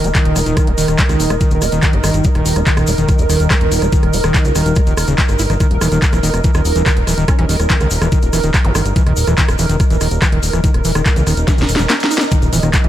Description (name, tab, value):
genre	psychedelic trance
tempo	143 BPM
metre	4/4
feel	straight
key	unclear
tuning	A4 = 440 Hz
part	pulsing gated texture	sustained chords	0.0-12.9 s	Bb4 to Eb5	-22 LUFS	right 4 dB	chorus, built-in reverb, sidechain pumping
part	overdriven acid bass	riff	0.0-12.9 s	Db3 to Fb4	-20 LUFS	equal	distortion, auto-pan, sidechain pumping, dub echo
part	fat analog bass	bass	0.0-12.9 s	Eb1 to Db2	-17 LUFS	equal	none
part	drum and bass drum kit	drums	0.0-12.9 s	handclaps, hi-hat, rim click, snare drum	-20 LUFS	equal	overdrive
part	egg shaker	percussion	0.0-12.8 s	none	-27 LUFS	left 4 dB	none
part	airy breathy pad	texture	0.0-12.3 s	Eb4 to Eb5	-25 LUFS	right 2 dB	chorus, sidechain pumping
part	electronic kick drum	drums	0.1-12.8 s	none	-14 LUFS	equal	overdrive
part	resonant blip pluck	second line	7.3-7.5 s	Db4	-31 LUFS	equal	none
part	zap, riser and impact	sound effects	8.6-12.9 s	none	-30 LUFS	equal	none
room	digital ambience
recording	none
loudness	-12 LUFS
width	side -12 dB against mid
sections	0.0-12.3 A section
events	drum fill 11.5-12.3; impact 12.3-12.9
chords	0.0 Eb5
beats	0.15 | 0.57 0.99 1.41 1.83 | 2.25 2.67 3.09 3.50 | 3.92 4.34 4.76 5.18 | 5.60 6.02 6.44 6.86 | 7.28 7.70 8.12 8.54 | 8.96 9.38 9.80 10.22 | 10.64 11.06 11.48 11.90 | 12.32 12.74